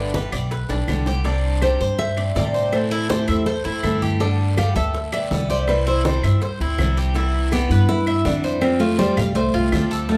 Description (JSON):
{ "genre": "latin, Cuban son and guajira", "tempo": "163 BPM", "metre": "4/4", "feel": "straight", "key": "C major", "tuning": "A4 = 440 Hz", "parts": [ { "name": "nylon-string guitar", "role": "melody", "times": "0.0-10.2 s", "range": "G3 to F5", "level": "-25 LUFS", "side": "equal", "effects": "none" }, { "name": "picked steel-string acoustic guitar", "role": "accompaniment", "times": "0.0-10.2 s", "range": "B2 to G4", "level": "-30 LUFS", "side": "equal", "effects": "none" }, { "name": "Cuban tres", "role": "arpeggios", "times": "0.0-10.1 s", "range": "D4 to F5", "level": "-29 LUFS", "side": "equal", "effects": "none" }, { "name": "upright bass", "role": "bass", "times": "0.0-10.2 s", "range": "G1 to A2", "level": "-24 LUFS", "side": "equal", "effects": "none" }, { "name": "bongos", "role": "percussion", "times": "0.1-10.2 s", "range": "none", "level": "-36 LUFS", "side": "equal", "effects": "none" }, { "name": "congas", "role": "percussion", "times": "0.1-10.2 s", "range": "none", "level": "-32 LUFS", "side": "equal", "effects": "none" }, { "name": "guiro", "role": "percussion", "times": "0.1-10.2 s", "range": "none", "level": "-41 LUFS", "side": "equal", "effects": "none" }, { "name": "claves", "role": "percussion", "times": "0.3-9.9 s", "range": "none", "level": "-36 LUFS", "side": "equal", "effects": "none" } ], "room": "moderate large studio reverb, RT60 1.1 s", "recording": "band playing live in one room", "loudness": "-20 LUFS", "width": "mono", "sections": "0.0-7.2 A section; 7.2-10.2 A section", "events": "drum fill 0.7-1.2", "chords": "0.0 G; 1.2 Csus2; 2.7 Am; 4.2 Gadd9; 5.7 C; 7.2 Cmaj7; 8.6 Fadd9", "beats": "0.14 0.51 0.88 | 1.25 1.62 1.99 2.36 | 2.73 3.10 3.46 3.83 | 4.20 4.57 4.94 5.31 | 5.68 6.05 6.42 6.78 | 7.15 7.52 7.89 8.26 | 8.62 8.99 9.36 9.72 | 10.09" }